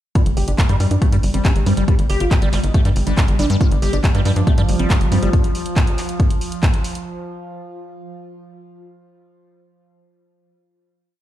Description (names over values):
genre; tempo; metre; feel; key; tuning
psychedelic trance; 139 BPM; 4/4; straight; unclear; A4 = 441 Hz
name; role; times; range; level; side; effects
wide unison lead; melody; 0.2-5.3 s; G3 to G4; -26 LUFS; equal; phaser, sidechain pumping, dub echo
liquid acid bass; riff; 0.2-5.3 s; G3 to G4; -25 LUFS; left 1 dB; phaser, auto-pan, sidechain pumping, dub echo
electronic kick drum; drums; 0.2-6.7 s; none; -16 LUFS; equal; none
techno drum kit; drums; 0.2-7.0 s; handclaps, hi-hat; -27 LUFS; right 1 dB; none
tight sequencer bass; bass; 0.3-5.3 s; G1 to G2; -18 LUFS; equal; none
overtone-sweeping drone; sustained chords; 4.0-7.1 s; F3 to F4; -27 LUFS; right 2 dB; chorus, built-in reverb, phaser, sidechain pumping
room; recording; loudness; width
little or no reverb; played on a big sound system in a bare room, large studio reverb; -15 LUFS; side -13 dB against mid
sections
0.2-7.1 groove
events
none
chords
0.2 G5